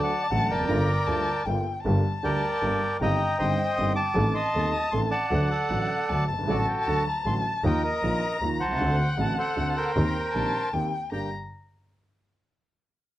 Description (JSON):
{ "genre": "tango", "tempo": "156 BPM", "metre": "3/4", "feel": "rubato", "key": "G minor", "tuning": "A4 = 440 Hz", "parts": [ { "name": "bandoneon", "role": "melody", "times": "0.0-11.3 s", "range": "F#4 to Eb6", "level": "-28 LUFS", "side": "right 1 dB", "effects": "none" }, { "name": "warm violin", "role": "second line", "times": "0.0-11.3 s", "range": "F#5 to Bb5", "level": "-31 LUFS", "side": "left 4 dB", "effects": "none" }, { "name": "warm concert grand piano", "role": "accompaniment", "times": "0.0-11.3 s", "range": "Eb1 to A4", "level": "-29 LUFS", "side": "right 2 dB", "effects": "none" }, { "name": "warm double bass", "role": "bass", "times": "0.0-11.3 s", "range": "F1 to Eb2", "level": "-29 LUFS", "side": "equal", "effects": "none" } ], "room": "light reverb", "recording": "worn, warbling old tape, cassette tape, warbly pitch drift", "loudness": "-23 LUFS", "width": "side -14 dB against mid", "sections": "0.0-1.9 A section; 1.9-11.1 B section; 11.1-12.3 C section", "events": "none", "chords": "0.0 D; 0.7 Gm7; 1.9 Gm; 3.0 Cm/G; 4.2 Adim; 5.3 D; 7.6 Ebsus2; 8.8 D7; 9.9 Eb6; 11.1 Gm", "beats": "0.31 | 0.69 1.08 1.47 | 1.85 2.24 2.62 | 3.01 3.39 3.78 | 4.16 4.55 4.93 | 5.32 5.70 6.09 | 6.48 6.86 7.25 | 7.64 8.02 8.41 | 8.79 9.18 9.56 | 9.95 10.34 10.72 | 11.11" }